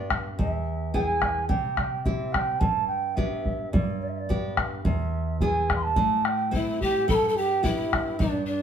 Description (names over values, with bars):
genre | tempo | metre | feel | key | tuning
andean folk, Andean ensemble | 107 BPM | 2/4 | straight | unclear | A4 = 435 Hz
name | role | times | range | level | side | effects
mellow large quena | melody | 0.0-8.6 s | D5 to C6 | -28 LUFS | right 4 dB | none
nylon-string guitar | accompaniment | 0.0-8.6 s | E2 to A4 | -29 LUFS | left 1 dB | none
bombo | percussion | 0.1-8.3 s | none | -27 LUFS | left 1 dB | none
breathy pan flute | second line | 6.6-8.6 s | D4 to A4 | -26 LUFS | left 2 dB | none
room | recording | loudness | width
wet studio reverb, RT60 0.8 s | band playing live in one room | -23 LUFS | side -8 dB against mid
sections
0.0-7.1 A section; 7.1-8.6 A section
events
none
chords
0.4 E; 1.5 C; 2.6 G; 4.8 E; 6.0 Am; 7.1 G